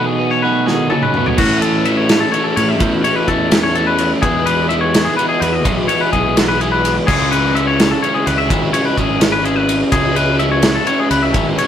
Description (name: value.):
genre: math rock and midwest emo.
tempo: 84 BPM (dotted quarters).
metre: 6/8.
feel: straight.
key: unclear.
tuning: A4 = 440 Hz.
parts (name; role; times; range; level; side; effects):
twelve-string electric guitar; accompaniment; 0.0-1.4 s; B2 to F#4; -19 LUFS; right 4 dB; spring reverb.
twangy electric guitar; arpeggios; 0.0-11.7 s; F#4 to E5; -18 LUFS; left 4 dB; none.
overdriven electric guitar; riff; 0.0-11.7 s; A2 to F#4; -19 LUFS; right 1 dB; none.
loose indie drum kit; drums; 0.7-11.7 s; crash cymbal, kick drum, ride cymbal, snare drum, toms; -17 LUFS; equal; none.
growling fingered electric bass; bass; 1.4-11.6 s; G#1 to A2; -21 LUFS; equal; overdrive.
room: moderate stone room reverb, RT60 1.0 s.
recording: rough rehearsal-room recording.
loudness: -12 LUFS.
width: side -9 dB against mid.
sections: 0.0-1.4 A section; 1.4-11.7 B section.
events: break 0.0-1.4; drum fill 0.7-1.4.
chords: 0.0 B9sus4; 1.4 A; 4.2 E6; 7.1 C#m7.